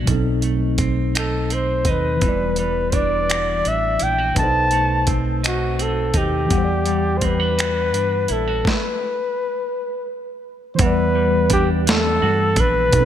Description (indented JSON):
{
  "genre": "slow six-eight R&B",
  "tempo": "56 BPM (dotted quarters)",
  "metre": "6/8",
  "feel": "straight",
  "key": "E minor",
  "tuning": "A4 = 440 Hz",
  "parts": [
    { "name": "clean electric guitar", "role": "second line", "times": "0.0-13.1 s", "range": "B2 to F#4", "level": "-27 LUFS", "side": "right 5 dB", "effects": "wide subtle chorus" },
    { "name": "mellow tine electric piano", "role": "accompaniment", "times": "0.0-13.1 s", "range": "B2 to F#5", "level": "-24 LUFS", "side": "left 1 dB", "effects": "medium stereo tremolo" },
    { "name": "deep dub fingered electric bass", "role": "bass", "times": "0.0-13.1 s", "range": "E1 to G2", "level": "-24 LUFS", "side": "equal", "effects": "none" },
    { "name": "dusty soul sampler-style drum kit", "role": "drums", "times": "0.1-13.1 s", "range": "finger snaps, hi-hat, kick drum, snare drum", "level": "-22 LUFS", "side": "equal", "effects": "overdrive, gated reverb" },
    { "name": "warm flugelhorn", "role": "melody", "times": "1.2-13.1 s", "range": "F#4 to A5", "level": "-20 LUFS", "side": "left 1 dB", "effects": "none" }
  ],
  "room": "moderate plate reverb, RT60 2.9 s",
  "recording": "bright 1980s-style digital production",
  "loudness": "-17 LUFS",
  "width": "side -10 dB against mid",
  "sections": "0.0-10.8 A section; 10.8-13.1 B section",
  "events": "stop 8.6-10.8",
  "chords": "0.1 B7b9; 2.2 Em9; 4.4 B7b9; 6.5 Em9; 8.6 N.C.; 10.8 Em9"
}